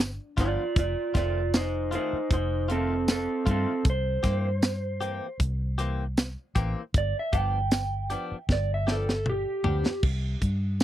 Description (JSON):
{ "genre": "straight-eighth soul blues", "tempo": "78 BPM", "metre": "4/4", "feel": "swing 55% on 16ths", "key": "unclear", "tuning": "A4 = 439 Hz", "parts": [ { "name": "vintage muted fingered electric bass", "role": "bass", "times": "0.0-10.8 s", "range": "F1 to G2", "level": "-29 LUFS", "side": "equal", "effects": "none" }, { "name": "tight funk drum kit", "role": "drums", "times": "0.0-10.8 s", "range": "crash cymbal, hi-hat, kick drum, snare drum, tambourine, toms", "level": "-25 LUFS", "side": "equal", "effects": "none" }, { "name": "electric guitar through a small old amp", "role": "melody", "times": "0.4-10.0 s", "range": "C4 to G5", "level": "-29 LUFS", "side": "right 2 dB", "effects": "warbly pitch drift" }, { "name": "direct-recorded clean electric guitar", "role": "stabs", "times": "0.4-9.9 s", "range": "Eb3 to G4", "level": "-34 LUFS", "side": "left 4 dB", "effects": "lush chorus" } ], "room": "little or no reverb", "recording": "dry, close 1970s-style studio recording", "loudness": "-25 LUFS", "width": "side -12 dB against mid", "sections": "0.0-10.0 A section", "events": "clean electric guitar solo 0.0-10.0; drum fill 8.5-10.0", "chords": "0.0 G7; 0.8 F7; 3.9 C7; 6.9 G7; 10.0 C5", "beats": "0.00 | 0.77 1.54 2.31 3.08 | 3.85 4.63 5.40 6.17 | 6.94 7.71 8.49 9.26 | 10.03 10.80" }